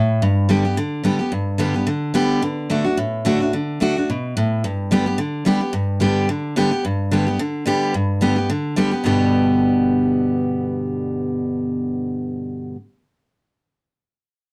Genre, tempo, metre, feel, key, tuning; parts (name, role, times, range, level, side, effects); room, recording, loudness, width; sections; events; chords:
bluegrass; 218 BPM; 4/4; swing 54% on 8ths; G major; A4 = 440 Hz
picked steel-string acoustic guitar; solo; 0.0-12.8 s; G2 to G4; -20 LUFS; equal
light reverb; close, detailed microphones; -20 LUFS; mono
0.0-6.8 A section; 6.8-9.0 B section; 9.0-11.3 C section
0.2 G; 2.4 D; 4.6 G